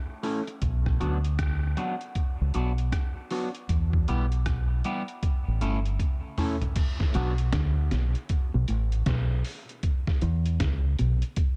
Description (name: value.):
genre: dub reggae.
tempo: 78 BPM.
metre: 4/4.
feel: swing 63% on 16ths.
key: B minor.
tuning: A4 = 439 Hz.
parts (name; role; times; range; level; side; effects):
electric guitar at the edge of break-up; accompaniment; 0.2-7.3 s; F#3 to A4; -36 LUFS; equal; phaser, low-pass filter, dub echo.
trip hop sampler-style drum kit; drums; 0.2-11.6 s; crash cymbal, hi-hat, kick drum, rim click, snare drum, toms; -31 LUFS; equal; none.
deep dub fingered electric bass; bass; 0.6-11.2 s; G1 to E2; -28 LUFS; equal; none.
clean electric guitar; riff; 7.1-11.1 s; A2 to E3; -34 LUFS; equal; none.
room: little or no reverb.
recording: dark, warm production.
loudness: -27 LUFS.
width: mono.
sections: 0.0-6.8 A section; 6.8-11.6 B section.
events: filter sweep on clean electric guitar 0.0-6.8; drum fill 6.0-6.8.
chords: 0.0 A; 0.6 Bm; 3.7 Em; 5.2 A; 6.8 Bm; 9.8 E5.